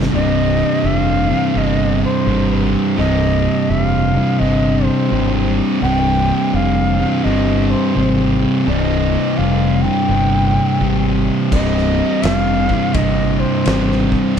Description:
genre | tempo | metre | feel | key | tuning
stoner and doom metal | 84 BPM | 4/4 | swing 64% on 8ths | C minor | A4 = 439 Hz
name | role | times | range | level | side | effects
thick fuzz guitar | riff | 0.0-14.4 s | C2 to C3 | -20 LUFS | left 11 dB | distortion
thick fuzz guitar | riff | 0.0-14.4 s | C2 to C3 | -19 LUFS | right 9 dB | distortion
growling fingered electric bass | bass | 0.0-14.4 s | C1 to Ab1 | -20 LUFS | equal | overdrive
oversized low-tuned drum kit | drums | 0.0-0.1, 11.5-14.4 s | crash cymbal, kick drum, ride cymbal, snare drum | -23 LUFS | equal | none
breathy shakuhachi | melody | 0.1-14.1 s | C5 to G5 | -22 LUFS | left 1 dB | tape echo
distorted electric guitar | riff | 0.1-14.4 s | C2 to C3 | -23 LUFS | left 1 dB | overdrive
room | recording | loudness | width
studio reverb | none | -13 LUFS | side -8 dB against mid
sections
0.1-14.4 A section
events
none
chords
0.1 Cm

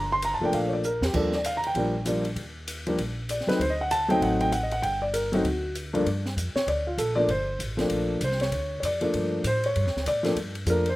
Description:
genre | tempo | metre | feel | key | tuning
jazz piano trio | 195 BPM | 4/4 | swing 61% on 8ths | G minor | A4 = 440 Hz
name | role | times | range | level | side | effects
warm upright piano | melody | 0.0-11.0 s | G2 to C6 | -25 LUFS | equal | slapback echo
upright bass | bass | 0.0-11.0 s | F1 to A2 | -31 LUFS | equal | none
open jazz drum kit | drums | 0.2-10.9 s | crash cymbal, hi-hat, kick drum, ride cymbal, snare drum | -35 LUFS | equal | none
room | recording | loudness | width
little or no reverb | recorded outdoors, with no room sound | -24 LUFS | side -17 dB against mid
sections
0.0-6.1 A section; 6.1-11.0 B section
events
drum fill 0.8-1.1; upright piano solo 6.1-11.0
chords
0.0 Gm7; 1.1 Ebmaj7; 3.6 D7b9; 4.8 Gmmaj7; 5.4 D; 6.1 Gm7

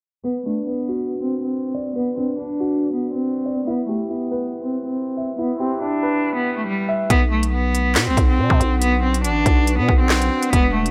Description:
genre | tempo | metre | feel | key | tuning
hip hop, drill | 140 BPM | 4/4 | half-time | B phrygian | A4 = 440 Hz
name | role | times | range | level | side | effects
rich cello | melody | 0.2-10.9 s | G3 to D4 | -24 LUFS | equal | low-pass filter
dark concert grand piano | accompaniment | 0.2-7.1 s | B3 to E5 | -28 LUFS | equal | low-pass filter
deep dark ambient pad | sustained chords | 8.3-10.9 s | D4 to F#5 | -32 LUFS | equal | chorus, built-in reverb
growling 808-style bass | bass | 7.1-10.9 s | E1 to B2 | -23 LUFS | equal | none
drill drum kit | drums | 7.1-10.9 s | handclaps, hi-hat, kick drum, snare drum | -21 LUFS | equal | none
room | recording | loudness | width
little or no reverb | low-pass filter | -20 LUFS | mono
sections
0.2-7.1 A section; 7.1-10.9 B section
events
filter sweep 0.2-7.1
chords
0.2 Bm; 3.7 Em; 7.1 Bm

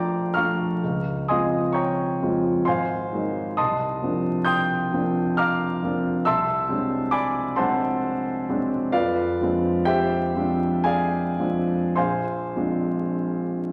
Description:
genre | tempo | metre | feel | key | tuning
classical, impressionist solo piano | 50-69 BPM | 3/4 | rubato | unclear | A4 = 440 Hz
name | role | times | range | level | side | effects
warm concert grand piano | solo | 0.0-13.7 s | Ab1 to G6 | -24 LUFS | equal | none
room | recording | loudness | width
wet recital hall reverb, RT60 1.3 s | vinyl crackle | -24 LUFS | mono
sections
0.0-13.7 A section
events
none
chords
0.0 Bbmaj7; 0.8 Dbmaj7; 2.7 Ab9; 3.6 Cm11; 6.3 D7#11/C; 8.9 Fm6; 12.0 Bb9

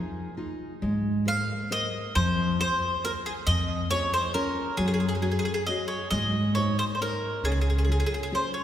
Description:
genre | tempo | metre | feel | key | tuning
italian folk, Italian serenade | 136 BPM | 3/4 | straight | Ab major | A4 = 441 Hz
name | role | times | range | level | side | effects
mandolin | melody | 0.0-8.6 s | Ab4 to F5 | -28 LUFS | equal | none
nylon-string guitar | accompaniment | 0.0-8.6 s | Db3 to C5 | -30 LUFS | left 1 dB | none
upright bass | bass | 0.0-8.0 s | Db2 to Ab2 | -29 LUFS | equal | none
room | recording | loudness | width
wet church reverb, RT60 3.4 s | recorded in a church or concert hall | -24 LUFS | side -10 dB against mid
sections
0.8-8.6 A section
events
none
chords
0.0 Fm7; 0.8 Abadd9; 2.1 Fm; 3.5 Db/F; 4.8 Gbsus2; 6.1 Ab; 7.4 Db

